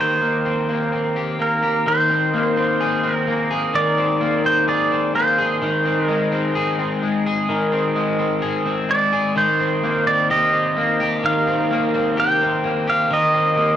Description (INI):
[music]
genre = dream pop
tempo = 64 BPM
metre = 4/4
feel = straight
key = unclear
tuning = A4 = 437 Hz
[part]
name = pedal steel guitar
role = melody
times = 0.0-13.8 s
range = Bb4 to G5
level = -19 LUFS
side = right 2 dB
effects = tape echo
[part]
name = electric guitar at the edge of break-up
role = arpeggios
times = 0.0-13.8 s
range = Eb3 to Ab4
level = -19 LUFS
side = left 2 dB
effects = lush chorus, tape echo
[sound]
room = light reverb, digital ambience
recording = dry, gritty hardware recording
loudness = -17 LUFS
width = side -10 dB against mid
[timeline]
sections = 0.0-1.9 A section; 1.9-13.8 B section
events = none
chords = 0.0 Cm7; 1.9 Abadd9; 5.6 Ab/Eb; 9.4 Cm7